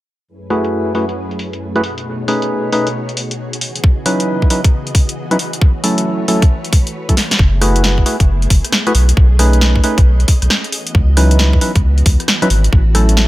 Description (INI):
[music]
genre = UK garage, two-step garage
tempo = 135 BPM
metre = 4/4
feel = swing 64% on 16ths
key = F# dorian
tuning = A4 = 439 Hz
[part]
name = soft string machine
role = sustained chords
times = 0.3-13.3 s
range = F#2 to D#5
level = -26 LUFS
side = equal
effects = ensemble chorus, sidechain pumping
[part]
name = percussive organ stab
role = stabs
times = 0.5-13.3 s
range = F#3 to B4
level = -17 LUFS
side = equal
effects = chorus, cassette tape, dub echo
[part]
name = punchy analog drum machine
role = drums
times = 0.5-13.3 s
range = hi-hat, rim click, snare drum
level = -18 LUFS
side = equal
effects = low-pass filter on hats, low-pass filter on snare, low-pass filter on room
[part]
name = electronic kick drum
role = drums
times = 3.8-12.8 s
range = none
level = -11 LUFS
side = equal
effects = none
[part]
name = saturated sub bass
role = bass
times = 7.4-13.3 s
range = F#1 to C#2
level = -12 LUFS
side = equal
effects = none
[sound]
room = digital ambience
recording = none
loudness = -11 LUFS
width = side -17 dB against mid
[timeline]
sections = 0.3-7.4 A section; 7.4-13.3 B section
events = filter sweep on string machine 0.3-7.4; drum fill 7.2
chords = 0.3 F#m11; 1.8 B13; 3.6 C#m11; 5.6 A6; 7.4 F#m11; 8.9 B13; 10.7 C#m11; 12.7 A6